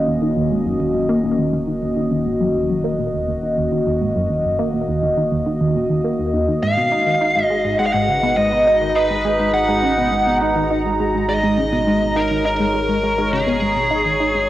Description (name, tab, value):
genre	ambient, sequencer-driven space music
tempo	103 BPM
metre	4/4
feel	straight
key	unclear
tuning	A4 = 440 Hz
part	sweeping resonant pad	sustained chords	0.0-14.5 s	Eb3 to Bb5	-20 LUFS	equal	chorus, phaser, cassette tape
part	warm sub bass	bass	0.0-14.5 s	Eb1 to Ab1	-32 LUFS	equal	none
part	tight sequenced synth	riff	0.1-14.4 s	Eb2 to Eb4	-21 LUFS	equal	chorus, phaser, vintage 12-bit sampler grit, cassette tape, ping-pong delay
part	biting lead guitar	melody	6.6-14.5 s	Ab4 to Gb5	-19 LUFS	equal	overdrive, cassette tape, ping-pong delay
room	wet spring reverb, RT60 2.7 s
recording	home recording on cassette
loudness	-16 LUFS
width	side -14 dB against mid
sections	0.0-14.5 A section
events	none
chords	0.0 Ebm7; 6.6 Abm7